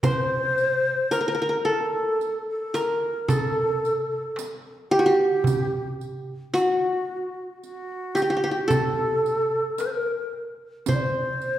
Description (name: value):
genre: Arabic maqam ensemble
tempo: 111 BPM (eighths)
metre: 10/8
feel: straight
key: unclear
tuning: A4 = 441 Hz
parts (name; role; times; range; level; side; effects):
- qanun; melody; 0.0-11.6 s; F#4 to C5; -24 LUFS; equal; none
- mellow ney; second line; 0.0-11.6 s; F#4 to D5; -26 LUFS; equal; none
- darbuka; percussion; 0.0-11.1 s; none; -28 LUFS; right 2 dB; none
- riq; percussion; 0.0-11.6 s; none; -36 LUFS; right 3 dB; none
room: wet recital hall reverb, RT60 1.6 s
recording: recorded in a church or concert hall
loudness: -22 LUFS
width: side -12 dB against mid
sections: 0.0-11.6 A section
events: none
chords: none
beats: | 0.02 0.57 1.11 1.65 2.19 2.74 3.28 3.82 4.37 4.91 | 5.45 5.99 6.54 7.08 7.62 8.16 8.70 9.25 9.79 10.33 | 10.87 11.41